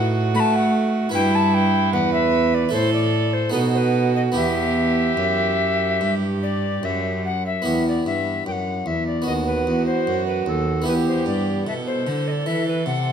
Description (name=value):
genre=classical, baroque-style sonata movement with continuo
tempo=75 BPM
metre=4/4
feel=straight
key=E minor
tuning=A4 = 439 Hz
part: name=alto recorder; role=melody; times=0.0-13.1 s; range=A4 to B5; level=-24 LUFS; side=left 5 dB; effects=none
part: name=dark violin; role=second line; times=0.0-13.1 s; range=E4 to B4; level=-25 LUFS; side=right 10 dB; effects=none
part: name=harpsichord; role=accompaniment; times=0.0-13.1 s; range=D#2 to B4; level=-24 LUFS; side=equal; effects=none
part: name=rich cello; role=bass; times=0.0-13.1 s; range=D#2 to A3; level=-24 LUFS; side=right 2 dB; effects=none
room=moderate recital hall reverb, RT60 1.6 s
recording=none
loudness=-18 LUFS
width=side -8 dB against mid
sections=0.0-7.7 A section; 7.7-13.1 B section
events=none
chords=0.0 B7/A; 1.1 Em/G; 2.7 A5; 3.5 B7; 4.4 Em; 9.3 B/D#; 10.9 Em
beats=0.34 | 1.14 1.93 2.73 3.54 | 4.36 5.19 6.02 6.84 | 7.67 8.47 9.27 10.07 | 10.87 11.67 12.46